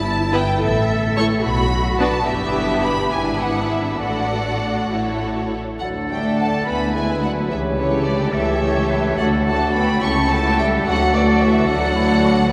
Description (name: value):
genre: quick classical-period movement for symphony orchestra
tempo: 71 BPM (dotted quarters)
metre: 6/8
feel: rubato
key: D major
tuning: A4 = 440 Hz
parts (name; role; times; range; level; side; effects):
- warm studio violin section; melody; 0.0-12.5 s; C#5 to C#6; -26 LUFS; equal; none
- warm studio cello section; bass; 0.0-12.4 s; C#2 to A4; -26 LUFS; equal; none
- warm studio double bass section; bass; 0.0-12.4 s; G1 to D2; -26 LUFS; equal; none
- warm studio violin section; second line; 0.3-12.5 s; E4 to D5; -29 LUFS; equal; none
- warm studio viola section; accompaniment; 0.3-12.5 s; G#3 to E4; -29 LUFS; equal; none
- clear oboe; second line; 5.8-12.5 s; A4 to C#5; -29 LUFS; equal; none
- mellow small flute group; second line; 5.8-12.5 s; A4 to A5; -29 LUFS; equal; none
- warm clarinet; second line; 5.8-12.5 s; D4 to G4; -29 LUFS; equal; none
- warm French horn section; sustained chords; 5.8-12.5 s; C#3 to C#4; -27 LUFS; equal; none
room: wet church reverb, RT60 3.8 s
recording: none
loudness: -19 LUFS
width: mono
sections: 0.0-5.8 A section; 5.8-12.5 B section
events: none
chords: 0.0 Em/G; 0.6 A; 1.4 Bm; 2.3 Em7/G; 3.1 E7/G#; 4.0 D/A; 4.9 A; 5.8 D5; 6.7 E7/D; 7.5 A7/C#; 9.2 D; 10.0 A7/C#; 10.9 D